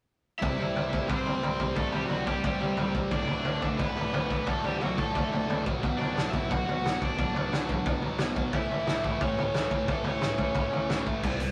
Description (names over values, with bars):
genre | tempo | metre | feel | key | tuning
punk rock | 177 BPM | 4/4 | straight | unclear | A4 = 439 Hz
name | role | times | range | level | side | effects
cranked stack guitar | melody | 0.4-11.0 s | F#3 to F#5 | -35 LUFS | equal | overdrive
sludgy distorted guitar | riff | 0.4-11.5 s | D2 to C4 | -34 LUFS | equal | overdrive
loose indie drum kit | drums | 0.4-11.5 s | crash cymbal, hi-hat, kick drum, snare drum, toms | -32 LUFS | equal | none
overdriven picked electric bass | bass | 11.2-11.5 s | C2 | -36 LUFS | equal | none
room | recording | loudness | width
light reverb | rough rehearsal-room recording | -29 LUFS | mono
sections
0.4-11.2 A section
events
none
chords
0.4 C; 3.1 D5; 5.7 Bm; 8.5 A